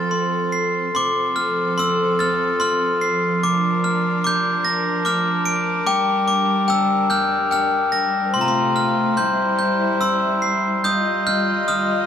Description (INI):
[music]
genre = children's music, lullaby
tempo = 72 BPM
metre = 3/4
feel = rubato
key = F major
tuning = A4 = 440 Hz
[part]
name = glockenspiel with brass mallets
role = melody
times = 0.0-12.1 s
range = G5 to D7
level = -19 LUFS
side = left 1 dB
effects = none
[part]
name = rich chamber string section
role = sustained chords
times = 0.0-12.1 s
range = C3 to Eb5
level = -22 LUFS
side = equal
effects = none
[sound]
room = moderate recital hall reverb, RT60 1.5 s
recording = dark, warm production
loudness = -17 LUFS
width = side -8 dB against mid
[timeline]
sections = 1.0-12.1 A section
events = none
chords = 0.0 F; 3.4 Bb/F; 5.9 Gm; 8.3 F/C; 9.2 C; 10.9 Ebadd9